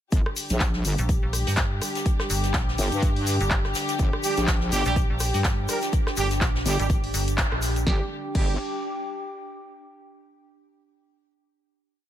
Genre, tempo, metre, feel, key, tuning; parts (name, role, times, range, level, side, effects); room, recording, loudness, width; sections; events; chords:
bass house; 124 BPM; 4/4; swing 57% on 16ths; G minor; A4 = 440 Hz
dark studio string section; sustained chords; 0.1-8.1 s; D3 to G4; -33 LUFS; equal; vintage 12-bit sampler grit, sidechain pumping
wobble bass; bass; 0.1-8.6 s; G1 to G2; -25 LUFS; equal; chorus, sidechain pumping
electronic kick drum; drums; 0.1-8.5 s; -24 LUFS; equal
house drum kit; drums; 0.1-8.5 s; crash cymbal, handclaps, hi-hat, rim click, snare drum; -30 LUFS; equal
jazz brush drum kit; drums; 0.1-7.8 s; hi-hat, snare drum; -36 LUFS; left 2 dB; high-pass filter on hats, high-pass filter on snare, high-pass filter on room
egg shaker; percussion; 0.1-7.8 s; -35 LUFS; left 4 dB
warbly tape-like pad; texture; 0.9-9.8 s; D4 to D6; -33 LUFS; left 1 dB; chorus, built-in reverb, sidechain pumping
metallic FM bass; bass; 1.0-7.8 s; G1 to G2; -27 LUFS; equal; overdrive, sidechain pumping
mellow horn section; stabs; 4.2-8.5 s; G3 to Bb4; -30 LUFS; right 5 dB; sidechain pumping, dub echo
light reverb; -22 LUFS; side -11 dB against mid
0.1-7.9 drop; 7.9-9.8 final chord
drop 0.1-7.9; band accent 7.4
0.1 G5